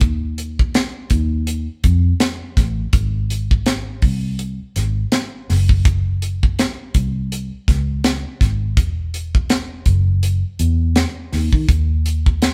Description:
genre	lush 1970s-style soul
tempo	82 BPM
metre	4/4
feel	swing 58% on 16ths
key	unclear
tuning	A4 = 440 Hz
part	vintage muted fingered electric bass	bass	0.0-12.5 s	E1 to Eb3	-21 LUFS	equal	none
part	tight funk drum kit	drums	0.0-12.5 s	hi-hat, kick drum, snare drum	-20 LUFS	equal	none
room	moderate stone room reverb, RT60 1.1 s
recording	band playing live in one room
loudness	-19 LUFS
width	mono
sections	0.0-12.5 A section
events	none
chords	none

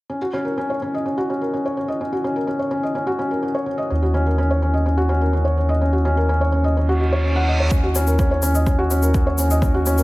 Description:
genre	piano and strings electronica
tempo	126 BPM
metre	4/4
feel	straight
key	Eb minor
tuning	A4 = 440 Hz
part	felt-muted upright piano	riff	0.1-10.0 s	Db4 to Gb5	-20 LUFS	equal	digital delay
part	warm sub bass	bass	3.9-10.0 s	Eb2	-19 LUFS	equal	tube saturation, sidechain pumping
part	reverse cymbal	sound effects	6.9-7.7 s	none	-28 LUFS	right 2 dB	none
part	granular cloud pad	sustained chords	9.3-10.0 s	Bb3 to Db5	-38 LUFS	right 1 dB	none
part	electronic kick drum	drums	7.7-9.7 s	none	-20 LUFS	equal	overdrive
part	shaker	drums	7.7-10.0 s	none	-28 LUFS	left 3 dB	overdrive
room	light reverb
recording	none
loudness	-17 LUFS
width	side -19 dB against mid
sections	0.1-7.7 A section; 7.7-10.0 B section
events	reverse cymbal 6.9-7.7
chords	0.1 Ebm7

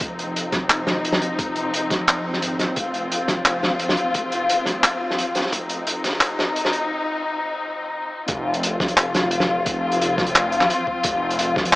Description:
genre	half-time drum and bass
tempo	174 BPM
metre	4/4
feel	half-time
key	unclear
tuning	A4 = 440 Hz
part	muted studio string section	sustained chords	0.0-11.8 s	F3 to F4	-23 LUFS	left 2 dB	vintage 12-bit sampler grit, sidechain pumping
part	phased detuned saw bass	bass	0.0-11.8 s	F1 to Bb1	-31 LUFS	equal	phaser
part	electronic kick drum	drums	0.0-6.1, 8.3-11.6 s	none	-31 LUFS	equal	none
part	crunchy breakbeat drum kit	drums	0.2-11.8 s	handclaps, hi-hat, snare drum	-21 LUFS	equal	none
room	moderate huge ambient reverb, RT60 8.5 s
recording	high-pass filter, small speaker sound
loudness	-19 LUFS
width	side -19 dB against mid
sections	0.0-8.3 A section; 8.3-11.8 B section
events	build-up 0.0-8.3; break 6.9-8.3; drop 8.3-11.8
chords	0.0 F5

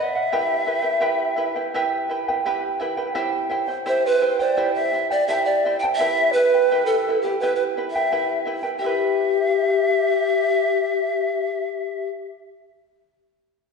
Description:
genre	andean folk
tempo	85 BPM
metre	4/4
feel	straight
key	E minor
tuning	A4 = 440 Hz
part	breathy pan flute	melody	0.0-12.1 s	G4 to G5	-22 LUFS	right 2 dB	none
part	breathy large quena	second line	0.0-12.1 s	G4 to A5	-24 LUFS	left 8 dB	none
part	charango	accompaniment	0.0-12.4 s	E4 to G5	-24 LUFS	right 3 dB	none
room	wet scoring stage reverb, RT60 1.7 s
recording	heard from further back in the room, nothing above 10.4 kHz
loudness	-19 LUFS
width	side -4 dB against mid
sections	0.0-8.8 A section; 8.8-11.6 B section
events	none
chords	0.3 Em; 3.1 C; 6.0 Em

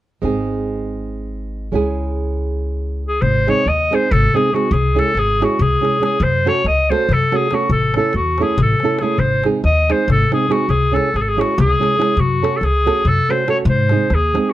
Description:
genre	balkan folk, Balkan wedding band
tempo	281 BPM (eighths)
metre	7/8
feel	straight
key	G# phrygian dominant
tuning	A4 = 440 Hz
part	nylon-string guitar	accompaniment	0.2-14.5 s	G#3 to A4	-20 LUFS	right 4 dB	none
part	upright bass	bass	0.2-14.4 s	G#1 to G#2	-19 LUFS	equal	none
part	bright clarinet	melody	3.1-14.5 s	F#4 to D#5	-17 LUFS	left 1 dB	none
part	darbuka	percussion	3.2-14.5 s	none	-21 LUFS	left 3 dB	none
room	light reverb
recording	none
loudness	-14 LUFS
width	side -14 dB against mid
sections	0.2-3.2 A section; 3.2-14.5 B section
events	none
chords	0.2 G#; 1.7 C#m; 3.2 G#; 4.7 C#m; 6.2 F#m; 7.7 A; 9.2 G#; 10.7 C#m; 12.2 F#m; 13.7 G#

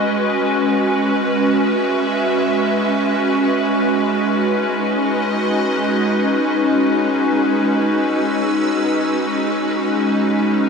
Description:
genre	ambient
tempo	free time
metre	none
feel	none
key	unclear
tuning	A4 = 440 Hz
part	evolving wavetable pad	sustained chords	0.0-10.7 s	G#3 to E6	-16 LUFS	equal	ensemble chorus, built-in reverb
part	bowed-like drone	drone	4.6-10.7 s	G#3 to D#4	-21 LUFS	left 2 dB	built-in reverb
room	wet huge ambient reverb, RT60 8.2 s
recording	cassette tape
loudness	-15 LUFS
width	side -5 dB against mid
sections	0.0-10.7 A section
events	none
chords	0.1 B5; 3.2 G#m7; 6.4 B5; 9.5 G#m7

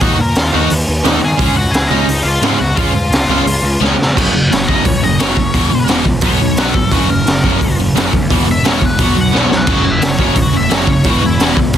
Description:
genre	punk rock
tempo	174 BPM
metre	4/4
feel	straight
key	unclear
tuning	A4 = 439 Hz
part	nasal lead guitar with a parked wah	melody	0.0-11.6 s	D#4 to A#5	-19 LUFS	left 3 dB	overdrive
part	biting overdriven guitar	riff	0.0-11.7 s	E2 to D#4	-18 LUFS	left 12 dB	none
part	overdriven semi-hollow guitar	riff	0.0-11.8 s	E2 to D#4	-18 LUFS	right 13 dB	none
part	fuzz picked electric bass	bass	0.0-11.8 s	E1 to D#3	-19 LUFS	equal	overdrive
part	raw garage drum kit	drums	0.0-11.8 s	crash cymbal, hi-hat, kick drum, snare drum	-14 LUFS	equal	none
room	little or no reverb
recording	dense, heavily limited modern master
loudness	-10 LUFS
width	side -10 dB against mid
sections	0.0-4.2 A section; 4.2-11.8 B section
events	drum fill 3.8-4.2, 9.3-9.7; lead electric guitar solo 4.2-11.8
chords	0.0 D#m; 1.4 C#; 4.2 F#5; 5.5 E5; 6.2 B5; 6.9 F#; 8.3 E5; 9.0 B5; 9.7 F#5; 11.1 E5

